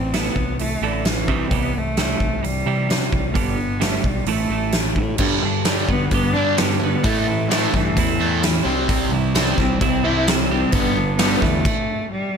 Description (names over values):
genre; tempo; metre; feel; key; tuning
quiet-loud alternative rock; 130 BPM; 4/4; straight; unclear; A4 = 438 Hz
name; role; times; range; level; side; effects
rich cello; melody; 0.0-12.4 s; D3 to E4; -24 LUFS; left 1 dB; analog delay
twelve-string electric guitar; arpeggios; 0.0-11.7 s; G2 to G4; -26 LUFS; right 13 dB; spring reverb
fuzz fingered electric bass; bass; 0.0-11.6 s; G1 to C3; -24 LUFS; left 1 dB; overdrive
huge arena drum kit; drums; 0.1-11.8 s; crash cymbal, hi-hat, kick drum, snare drum; -22 LUFS; equal; none
fuzz guitar; riff; 5.2-11.6 s; G2 to C4; -22 LUFS; left 1 dB; distortion
room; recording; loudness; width
little or no reverb; none; -17 LUFS; side -6 dB against mid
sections
0.0-5.2 A section; 5.2-12.4 B section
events
stop 11.7-12.4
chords
0.0 Am; 1.3 C; 3.4 G; 4.3 A5; 5.2 G; 7.1 Am; 8.7 C; 10.7 G; 11.7 N.C.